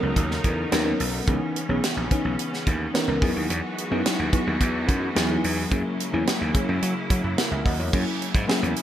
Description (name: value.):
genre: polished 1980s jazz-funk pop.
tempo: 108 BPM.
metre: 4/4.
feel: straight.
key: unclear.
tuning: A4 = 438 Hz.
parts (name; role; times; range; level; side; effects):
bell-like FM electric piano; accompaniment; 0.0-8.8 s; E3 to F#5; -26 LUFS; left 1 dB; analog chorus.
clear symphonic string section; sustained chords; 0.0-8.8 s; C#3 to A#4; -32 LUFS; right 1 dB; none.
gritty slap bass; bass; 0.0-8.7 s; A#1 to F#3; -26 LUFS; equal; overdrive.
tight funk drum kit; drums; 0.2-8.8 s; crash cymbal, hi-hat, kick drum, snare drum; -25 LUFS; right 1 dB; gated reverb.
room: light reverb, small room ambience.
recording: bright 1980s-style digital production.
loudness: -22 LUFS.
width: side -11 dB against mid.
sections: 0.0-7.9 A section.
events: none.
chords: 0.0 Bmaj9; 1.3 C#m7; 3.2 Emaj9; 5.7 F#9.